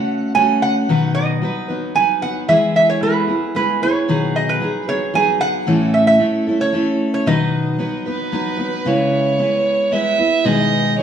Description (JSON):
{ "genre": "acoustic folk duo or small band", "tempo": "113 BPM", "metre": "3/4", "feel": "straight", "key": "unclear", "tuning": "A4 = 439 Hz", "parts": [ { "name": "lap resonator guitar", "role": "melody", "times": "0.0-8.6 s", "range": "B4 to G#5", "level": "-18 LUFS", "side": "right 3 dB", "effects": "none" }, { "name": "picked steel-string acoustic guitar", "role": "accompaniment", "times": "0.0-11.0 s", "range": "A2 to B4", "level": "-18 LUFS", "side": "left 1 dB", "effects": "none" }, { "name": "dark fiddle", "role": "second line", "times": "8.1-11.0 s", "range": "B4 to E5", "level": "-18 LUFS", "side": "right 4 dB", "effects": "none" } ], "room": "moderate large studio reverb, RT60 1.4 s", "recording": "studio ambience", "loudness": "-15 LUFS", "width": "side -8 dB against mid", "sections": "0.0-8.9 A section; 8.9-11.0 B section", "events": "fiddle solo 8.9-11.0", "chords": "0.0 F#m; 0.9 B; 2.5 E; 4.1 B6; 5.7 A; 7.3 B; 8.9 C#m7; 10.5 G#m/B" }